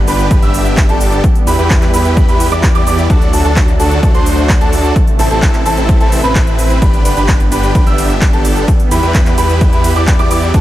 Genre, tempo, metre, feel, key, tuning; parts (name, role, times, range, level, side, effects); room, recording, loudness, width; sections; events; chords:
EDM, festival progressive house; 129 BPM; 4/4; straight; A4 = 440 Hz
lush unison pad; sustained chords; 0.0-10.6 s; C3 to B3; -22 LUFS; right 1 dB; chorus, sidechain pumping
wide detuned saw bass; bass; 0.0-10.6 s; G1 to E2; -16 LUFS; equal; chorus, sidechain pumping
dark grand piano; arpeggios; 0.1-10.6 s; A5 to E6; -20 LUFS; right 2 dB; sidechain pumping, dub echo
supersaw chords; riff; 0.1-10.6 s; C4 to E5; -17 LUFS; equal; sidechain pumping, dub echo
big-room dance drum kit; drums; 0.1-10.6 s; handclaps, hi-hat, ride cymbal, shaker; -22 LUFS; equal; overdrive
electronic kick drum; drums; 0.3-10.6 s; -12 LUFS; equal; overdrive
digital ambience; -9 LUFS; side -14 dB against mid
0.0-10.6 A section
0.0 G; 1.2 Em; 3.1 D; 5.0 Am; 6.8 G; 8.7 Em